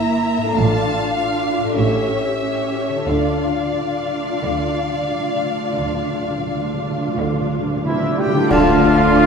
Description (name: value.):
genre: classical, slow romantic movement for symphony orchestra.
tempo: 43-52 BPM.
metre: 4/4.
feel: rubato.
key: D minor.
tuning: A4 = 440 Hz.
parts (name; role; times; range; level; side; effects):
rich chamber violin section; melody; 0.0-9.3 s; D5 to Bb5; -27 LUFS; left 3 dB; none.
rich studio violin section; second line; 0.0-9.3 s; A3 to F5; -26 LUFS; left 3 dB; none.
warm symphonic viola section; accompaniment; 0.0-9.3 s; Bb3 to G4; -23 LUFS; right 2 dB; none.
concert harp; arpeggios; 0.0-9.3 s; G2 to D5; -24 LUFS; left 4 dB; none.
rich symphonic cello section; bass; 0.0-9.3 s; G2 to D3; -27 LUFS; right 1 dB; none.
warm symphonic double bass section; bass; 0.0-9.3 s; G1 to D2; -25 LUFS; right 3 dB; none.
cymbal swell, clash cymbals and concert bass drum; percussion; 3.1-9.3 s; none; -31 LUFS; equal; none.
timpani; percussion; 3.1-9.3 s; D3; -24 LUFS; right 1 dB; none.
bright clarinet; second line; 7.8-9.3 s; E4 to G4; -22 LUFS; left 4 dB; none.
warm oboe; second line; 7.9-9.3 s; E4 to G4; -25 LUFS; equal; none.
mellow trumpet; stabs; 7.9-9.3 s; E4 to G4; -19 LUFS; right 1 dB; none.
bright silver concert flute; second line; 8.5-9.1 s; A5; -27 LUFS; left 2 dB; none.
warm bassoon; accompaniment; 8.5-9.0 s; D3; -22 LUFS; right 3 dB; none.
mellow French horn section; sustained chords; 8.5-9.3 s; A3 to A4; -23 LUFS; left 2 dB; none.
mellow trombone section; sustained chords; 8.5-9.3 s; D3 to F3; -24 LUFS; right 2 dB; none.
room: wet scoring stage reverb, RT60 1.8 s.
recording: heard from further back in the room.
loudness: -17 LUFS.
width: side -6 dB against mid.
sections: 0.0-8.5 A section.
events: timpani fill 3.1-8.5; band accent 8.5-9.3.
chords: 0.0 Edim/G; 0.6 Dm/A; 1.8 A7b9; 3.1 Dm.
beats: 0.56 1.77 | 3.07 4.43 5.79 7.17 | 8.51.